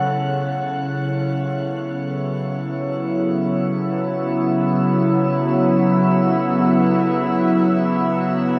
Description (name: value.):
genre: ambient.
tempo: free time.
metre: none.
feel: none.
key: unclear.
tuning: A4 = 441 Hz.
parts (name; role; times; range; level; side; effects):
evolving wavetable pad; sustained chords; 0.0-8.6 s; C#3 to A4; -20 LUFS; equal; chorus, built-in reverb.
room: wet shimmer reverb, RT60 7.7 s.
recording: none.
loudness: -20 LUFS.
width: mono.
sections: 0.1-8.6 A section.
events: none.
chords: 0.0 Esus2.